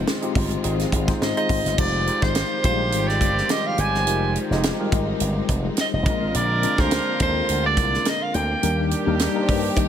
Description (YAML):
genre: polished 1980s jazz-funk pop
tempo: 105 BPM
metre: 4/4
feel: swing 54% on 16ths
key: F dorian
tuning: A4 = 442 Hz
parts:
  - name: mellow tine electric piano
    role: accompaniment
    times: 0.0-9.9 s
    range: G3 to F5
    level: -26 LUFS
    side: left 4 dB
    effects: medium stereo tremolo, wide subtle chorus
  - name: warm studio string section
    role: sustained chords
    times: 0.0-9.9 s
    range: D3 to G4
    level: -32 LUFS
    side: equal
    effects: none
  - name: slap bass with an envelope filter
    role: bass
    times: 0.0-9.9 s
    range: F1 to Eb3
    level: -25 LUFS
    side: equal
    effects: none
  - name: tight funk drum kit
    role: drums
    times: 0.1-9.9 s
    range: crash cymbal, hi-hat, kick drum, snare drum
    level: -25 LUFS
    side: right 1 dB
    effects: none
  - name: clear soprano saxophone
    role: melody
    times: 1.2-8.9 s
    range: C5 to Ab5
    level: -24 LUFS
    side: right 1 dB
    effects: none
  - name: mellow horn section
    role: second line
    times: 1.8-9.9 s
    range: Eb3 to Bb4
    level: -30 LUFS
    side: right 5 dB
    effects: none
room: small room reverb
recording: none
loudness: -19 LUFS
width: side -9 dB against mid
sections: 0.0-1.8 A section; 1.8-9.9 B section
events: none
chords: 0.0 Ab6; 1.8 Fm9; 6.1 Bb9; 8.6 Ebmaj7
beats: 0.07 0.64 1.21 | 1.78 2.35 2.92 3.49 | 4.06 4.63 5.20 5.77 | 6.34 6.91 7.48 8.05 | 8.62 9.20 9.77